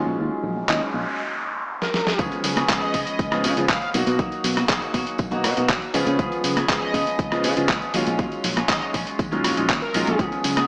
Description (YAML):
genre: filtered disco house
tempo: 120 BPM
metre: 4/4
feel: straight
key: unclear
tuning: A4 = 442 Hz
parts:
  - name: warm baby grand piano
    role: accompaniment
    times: 0.0-10.7 s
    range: F3 to Ab4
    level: -29 LUFS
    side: equal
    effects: phaser, sidechain pumping, low-pass filter
  - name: semi-hollow electric guitar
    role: riff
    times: 0.0-10.7 s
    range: F3 to Ab4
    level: -31 LUFS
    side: equal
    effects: lush chorus, sidechain pumping, low-pass filter
  - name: fingered electric bass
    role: bass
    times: 0.0-10.6 s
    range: Bb1 to Db3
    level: -30 LUFS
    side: equal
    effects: tube saturation, sidechain pumping, low-pass filter
  - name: congas and tambourine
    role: percussion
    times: 0.1-10.7 s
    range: none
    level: -35 LUFS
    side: equal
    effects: sidechain pumping on perc, low-pass filter on perc
  - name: noise sweep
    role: sound effects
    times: 0.5-2.2 s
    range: none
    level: -33 LUFS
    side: equal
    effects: none
  - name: analog synth brass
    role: melody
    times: 0.7-10.2 s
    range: Bb4 to F5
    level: -32 LUFS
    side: equal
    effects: chorus, sidechain pumping, low-pass filter
  - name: dusty soul sampler-style drum kit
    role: drums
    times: 0.7-10.7 s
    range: handclaps, hi-hat, rim click, snare drum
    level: -28 LUFS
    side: equal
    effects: overdrive, sidechain pumping on hats
  - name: electronic kick drum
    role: drums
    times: 2.2-10.3 s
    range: none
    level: -29 LUFS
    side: equal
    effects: overdrive
room: moderate lush hall reverb, RT60 2.1 s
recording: dreamy mix soaked in reverb, small speaker sound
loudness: -23 LUFS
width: mono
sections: 0.0-2.2 A section; 2.2-10.7 B section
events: filter sweep 0.0-2.2; noise sweep 0.5-2.2; drum fill 1.8-2.2; drop 2.2-10.7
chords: 0.0 Ebm11; 2.2 Db7; 3.9 Cbmaj7; 5.9 Db7; 7.9 Ebm11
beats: | 0.19 0.69 1.19 1.69 | 2.19 2.69 3.19 3.69 | 4.19 4.69 5.19 5.69 | 6.19 6.69 7.19 7.69 | 8.19 8.69 9.19 9.69 | 10.19